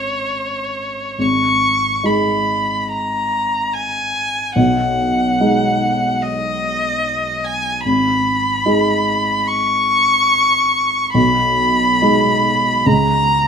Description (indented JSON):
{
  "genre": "classical, romantic duo for violin and grand piano",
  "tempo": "72 BPM",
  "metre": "4/4",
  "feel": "uneven beats, rubato",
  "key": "G# minor",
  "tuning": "A4 = 443 Hz",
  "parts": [
    { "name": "rich violin", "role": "melody", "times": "0.0-13.5 s", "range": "C#5 to C#6", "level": "-16 LUFS", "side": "equal", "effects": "none" },
    { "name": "dark baby grand piano", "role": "accompaniment", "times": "0.0-13.5 s", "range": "G#1 to G#4", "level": "-19 LUFS", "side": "equal", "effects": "none" }
  ],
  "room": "moderate recital hall reverb, RT60 1.4 s",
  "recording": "close, detailed microphones",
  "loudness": "-14 LUFS",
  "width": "side -6 dB against mid",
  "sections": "0.0-13.5 A section",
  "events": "none",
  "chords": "0.0 C#5/G#; 1.2 G#m; 4.6 G#m/B; 7.9 G#m; 11.1 G#m/B; 12.9 N.C.",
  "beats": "0.26 | 1.19 2.05 2.89 3.73 | 4.57 5.41 6.23 7.05 | 7.86 8.66 9.48 10.29 | 11.13 12.01 12.86"
}